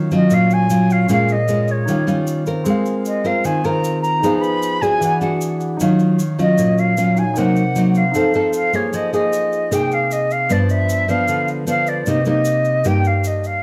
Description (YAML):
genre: bossa nova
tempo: 153 BPM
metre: 4/4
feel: straight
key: F minor from 8.9 s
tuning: A4 = 438 Hz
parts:
  - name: nylon-string guitar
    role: accompaniment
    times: 0.0-13.6 s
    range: G2 to Bb4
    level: -19 LUFS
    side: equal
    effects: none
  - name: warm grand piano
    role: accompaniment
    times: 0.0-9.0 s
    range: C4 to F#5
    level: -29 LUFS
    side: equal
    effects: none
  - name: concert flute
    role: melody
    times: 0.1-13.6 s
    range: Db5 to Cb6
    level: -22 LUFS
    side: equal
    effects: none
  - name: tube shaker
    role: percussion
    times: 0.1-13.6 s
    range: none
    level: -38 LUFS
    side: equal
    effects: none
room: moderate large studio reverb, RT60 0.8 s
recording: dark, warm production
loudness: -17 LUFS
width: mono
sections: 0.0-8.9 A section; 8.9-13.6 B section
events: none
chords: 0.0 Ebm9; 1.1 Bbm7; 1.9 Eb9; 2.7 Ab69; 4.2 Fm7b5; 5.0 E9; 5.8 Ebm9; 7.4 Cm7b5; 8.2 F7; 8.9 Fm7; 10.5 G7; 12.1 Cm7